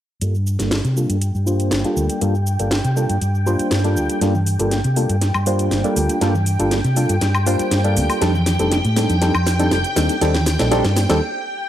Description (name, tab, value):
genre	filtered disco house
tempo	120 BPM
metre	4/4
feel	straight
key	G minor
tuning	A4 = 440 Hz
part	reed electric piano	accompaniment	0.2-11.2 s	G3 to C5	-21 LUFS	equal	fast tremolo, phaser, low-pass filter
part	string machine, full ensemble	sustained chords	0.2-11.7 s	G5	-26 LUFS	equal	ensemble chorus, vintage 12-bit sampler grit, low-pass filter
part	hollow-body short-scale fingered electric bass	bass	0.2-11.2 s	F1 to C3	-19 LUFS	equal	low-pass filter
part	house drum kit	drums	0.2-11.2 s	cabasa, hi-hat, snare drum, woodblock	-23 LUFS	equal	overdrive
part	tambourine and congas	percussion	4.2-11.2 s	none	-30 LUFS	right 3 dB	none
room	light reverb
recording	dry, gritty hardware recording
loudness	-16 LUFS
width	side -11 dB against mid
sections	0.2-4.2 A section; 4.2-11.7 B section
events	filter sweep 0.2-4.2, 4.2-11.7; build-up 4.2-11.7; drum fill 4.2-11.2; break 11.2-11.7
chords	0.2 Gm9; 8.2 F13; 10.0 Ebmaj7